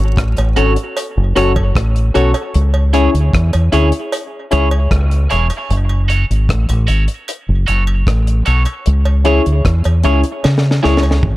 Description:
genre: dub reggae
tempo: 76 BPM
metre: 4/4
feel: straight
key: F# minor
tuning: A4 = 440 Hz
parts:
  - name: deep dub fingered electric bass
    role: bass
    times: 0.0-11.4 s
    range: E1 to C#3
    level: -13 LUFS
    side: equal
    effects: none
  - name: deep reggae drum kit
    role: drums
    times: 0.2-11.4 s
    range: hi-hat, kick drum, rim click, snare drum, toms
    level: -18 LUFS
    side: equal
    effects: none
  - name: cowbell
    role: percussion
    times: 0.4-11.2 s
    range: none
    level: -27 LUFS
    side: right 4 dB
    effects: high-pass filter on perc, dub echo
  - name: electric guitar at the edge of break-up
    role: accompaniment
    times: 0.6-11.0 s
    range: E4 to C#5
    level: -21 LUFS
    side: right 5 dB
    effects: high-pass filter, dub echo
  - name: percussive organ stab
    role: stabs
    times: 0.6-11.1 s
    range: C#4 to C#5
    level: -20 LUFS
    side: left 5 dB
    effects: chorus, high-pass filter, dub echo
room: light reverb, studio reverb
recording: none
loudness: -12 LUFS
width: side -17 dB against mid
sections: 0.0-11.4 A section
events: filter sweep 2.5-8.9; drum fill 10.4-11.4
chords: 0.0 F#m; 2.5 C#m; 5.7 F#m; 8.9 C#m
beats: 0.17 0.96 1.75 | 2.54 3.33 4.12 4.91 | 5.70 6.49 7.28 8.07 | 8.86 9.65 10.44 11.23

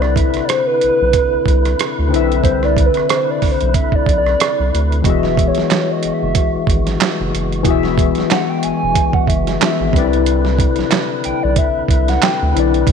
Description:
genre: R&B, neo-soul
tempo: 92 BPM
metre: 4/4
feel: swing 57% on 16ths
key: unclear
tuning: A4 = 438 Hz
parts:
  - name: hollow clarinet-like synth lead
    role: melody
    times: 0.0-12.6 s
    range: B4 to G#5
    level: -19 LUFS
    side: right 1 dB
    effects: chorus, phaser
  - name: barky tine electric piano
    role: accompaniment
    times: 0.0-12.9 s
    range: C3 to F#5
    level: -19 LUFS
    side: left 13 dB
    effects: overdrive, analog chorus
  - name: percussive tonewheel organ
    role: sustained chords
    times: 0.0-12.9 s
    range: D3 to B4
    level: -25 LUFS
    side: equal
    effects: chorus vibrato, fast rotary speaker
  - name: round analog bass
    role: bass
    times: 0.0-12.9 s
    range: E1 to D2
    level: -18 LUFS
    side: right 1 dB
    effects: none
  - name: dusty soul sampler-style drum kit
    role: drums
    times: 0.0-12.9 s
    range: handclaps, hi-hat, kick drum, rim click, snare drum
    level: -18 LUFS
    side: right 4 dB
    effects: none
room: light reverb, digital ambience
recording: 1960s-style stereo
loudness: -13 LUFS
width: side -7 dB against mid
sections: 0.0-12.9 A section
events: soft synth lead solo 0.0-12.9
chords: 0.0 Cmaj9; 5.0 Eadd9; 9.9 Cmaj9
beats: 0.48 1.13 1.78 | 2.44 3.09 3.74 4.39 | 5.04 5.70 6.35 7.00 | 7.65 8.30 8.96 9.61 | 10.26 10.91 11.57 12.22 | 12.87

